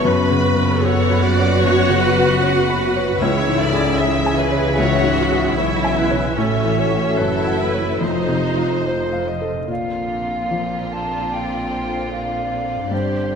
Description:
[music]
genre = cinematic, emotional film score for orchestra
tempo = 75 BPM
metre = 4/4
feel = rubato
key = Bb major from 9.7 s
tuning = A4 = 440 Hz
[part]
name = rich symphonic violin section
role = melody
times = 0.0-13.4 s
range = F4 to E5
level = -25 LUFS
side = left 3 dB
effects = none
[part]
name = clear clarinet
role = second line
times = 0.0-9.7 s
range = F#4 to E5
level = -27 LUFS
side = left 1 dB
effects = none
[part]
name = rich studio violin section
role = second line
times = 0.0-13.4 s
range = C5 to B5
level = -28 LUFS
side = left 2 dB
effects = none
[part]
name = felt-muted upright piano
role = accompaniment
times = 0.0-13.4 s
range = C#2 to B5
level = -24 LUFS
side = left 2 dB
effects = none
[part]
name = rich symphonic viola section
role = accompaniment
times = 0.0-13.4 s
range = D3 to B4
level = -23 LUFS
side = right 2 dB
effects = none
[part]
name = dark French horn section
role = sustained chords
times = 0.0-13.4 s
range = C#3 to F#4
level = -26 LUFS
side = left 3 dB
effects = none
[part]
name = concert harp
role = arpeggios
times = 0.0-13.4 s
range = F2 to C#6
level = -27 LUFS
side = left 7 dB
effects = none
[part]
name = rich symphonic cello section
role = bass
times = 0.0-13.4 s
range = F2 to C#3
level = -26 LUFS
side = right 3 dB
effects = none
[part]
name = rich symphonic double bass section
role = bass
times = 0.0-13.4 s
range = F1 to C#2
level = -25 LUFS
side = right 4 dB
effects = none
[part]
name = silver concert flute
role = second line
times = 9.7-13.4 s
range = C5 to A5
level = -25 LUFS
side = right 1 dB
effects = none
[sound]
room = wet concert hall reverb, RT60 2.2 s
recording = none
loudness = -16 LUFS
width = side -6 dB against mid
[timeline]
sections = 0.0-9.7 A section; 9.7-13.4 A section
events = none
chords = 0.1 F#sus4; 3.2 C#m; 6.4 A6; 8.0 F7; 9.7 Bbadd9

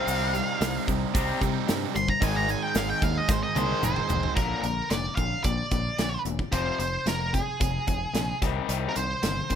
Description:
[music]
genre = classic rock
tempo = 111 BPM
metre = 4/4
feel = straight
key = unclear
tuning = A4 = 441 Hz
[part]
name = octave-fuzz lead guitar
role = melody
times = 0.0-9.6 s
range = Ab4 to C6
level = -30 LUFS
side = right 1 dB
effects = distortion, digital delay
[part]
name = crunchy overdriven guitar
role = riff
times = 0.0-4.4 s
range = Ab2 to Ab4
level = -31 LUFS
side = right 17 dB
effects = none
[part]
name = raw garage guitar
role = riff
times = 0.0-9.6 s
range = F2 to C4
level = -31 LUFS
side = left 11 dB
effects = overdrive
[part]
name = growling fingered electric bass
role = bass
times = 0.1-9.6 s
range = E1 to C3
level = -31 LUFS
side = equal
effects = overdrive
[part]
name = big rock drum kit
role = drums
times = 0.1-9.6 s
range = hi-hat, kick drum, snare drum, toms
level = -30 LUFS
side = equal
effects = none
[part]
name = tube shaker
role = percussion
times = 0.1-4.2 s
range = none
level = -38 LUFS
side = right 16 dB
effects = none
[sound]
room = little or no reverb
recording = none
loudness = -24 LUFS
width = side -8 dB against mid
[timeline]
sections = 0.0-4.4 A section; 4.4-9.6 B section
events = lead electric guitar solo 0.0-4.4; drum fill 3.3-4.4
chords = 0.0 Cm; 2.2 Ab; 4.4 Bb; 6.5 Fm; 8.4 Cm

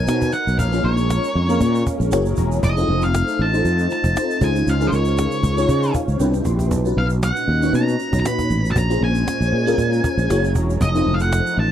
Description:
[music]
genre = polished 1980s jazz-funk pop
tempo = 117 BPM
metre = 4/4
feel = swing 54% on 16ths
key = Bb minor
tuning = A4 = 440 Hz
[part]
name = octave-fuzz lead guitar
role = melody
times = 0.0-11.7 s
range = C5 to B5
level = -24 LUFS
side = equal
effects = distortion
[part]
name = FM electric piano with soft pad layer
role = accompaniment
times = 0.0-11.7 s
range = A#2 to C6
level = -22 LUFS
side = left 2 dB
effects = phaser, ensemble chorus
[part]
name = warm analog pad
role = sustained chords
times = 0.0-11.7 s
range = A#2 to A#4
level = -29 LUFS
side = right 2 dB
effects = lush chorus
[part]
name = fretless electric bass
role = bass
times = 0.0-11.7 s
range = Fb1 to Db3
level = -19 LUFS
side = equal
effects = none
[part]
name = cajon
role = drums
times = 0.1-11.6 s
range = none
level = -25 LUFS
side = equal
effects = none
[part]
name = egg shaker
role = percussion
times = 0.1-11.6 s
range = none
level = -40 LUFS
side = right 19 dB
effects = none
[sound]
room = little or no reverb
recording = dry, close 1970s-style studio recording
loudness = -16 LUFS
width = side -10 dB against mid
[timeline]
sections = 0.0-11.7 A section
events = FM electric piano fill 1.6-2.6, 5.7-6.7; drum fill 6.2-6.7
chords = 0.0 Bmaj9; 0.6 Bbm7; 2.1 Gb9; 2.6 F7; 4.4 Dbmaj7; 6.2 Cmaj9; 6.7 Bmaj9; 8.8 Bbm7; 10.3 Gb9; 10.8 F7

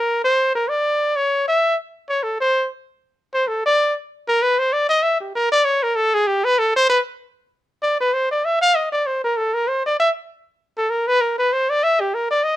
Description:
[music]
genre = jazz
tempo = 194 BPM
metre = 4/4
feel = swing 60% on 8ths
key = C mixolydian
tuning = A4 = 441 Hz
[part]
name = warm trumpet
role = solo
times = 0.0-12.6 s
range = G4 to F5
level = -17 LUFS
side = equal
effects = none
[sound]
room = light reverb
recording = none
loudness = -17 LUFS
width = side -14 dB against mid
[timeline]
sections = 0.0-7.5 A section; 7.5-12.6 A section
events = trumpet solo 0.0-12.6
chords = none

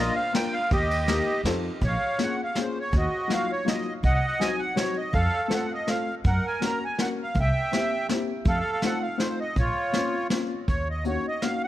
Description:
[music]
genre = musette waltz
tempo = 163 BPM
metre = 3/4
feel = swing 54% on 8ths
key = Bb minor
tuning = A4 = 441 Hz
[part]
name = accordion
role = melody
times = 0.0-11.7 s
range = F4 to Bb5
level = -27 LUFS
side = right 1 dB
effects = light tremolo tuning, analog delay
[part]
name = dark upright piano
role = accompaniment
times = 0.0-11.6 s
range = Gb3 to Bb4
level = -30 LUFS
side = left 4 dB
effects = none
[part]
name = upright bass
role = bass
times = 0.0-11.2 s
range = Bb1 to Gb2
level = -26 LUFS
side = equal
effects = none
[part]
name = vintage brush drum kit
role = drums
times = 0.3-11.5 s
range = hi-hat, kick drum, ride cymbal, snare drum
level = -28 LUFS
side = equal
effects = none
[sound]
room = light reverb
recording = none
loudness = -23 LUFS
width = side -14 dB against mid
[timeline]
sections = 0.0-1.8 A section; 1.8-10.7 B section; 10.7-11.7 C section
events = none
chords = 0.0 Bb; 0.7 Eb; 1.4 F7; 1.8 Bbm7; 2.9 Ebmadd9; 4.0 Cdim; 5.1 F; 6.2 Gb; 7.4 C7; 8.5 F7; 9.6 Bbmadd9; 10.7 Ebm7

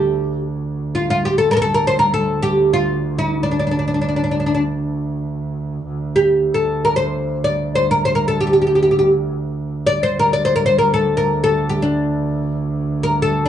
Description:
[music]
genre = Arabic maqam ensemble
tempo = free time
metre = none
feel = none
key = D maqam bayati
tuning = A4 = 440 Hz
[part]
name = oud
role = melody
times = 0.0-13.5 s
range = D4 to D5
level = -16 LUFS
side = left 1 dB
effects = none
[part]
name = clear double bass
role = drone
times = 0.0-13.5 s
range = D2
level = -22 LUFS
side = right 3 dB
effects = none
[sound]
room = wet studio reverb, RT60 0.5 s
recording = band playing live in one room, nothing above 10.5 kHz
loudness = -16 LUFS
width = side -10 dB against mid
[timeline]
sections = 0.0-5.8 A section; 5.8-13.5 A section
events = none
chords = none

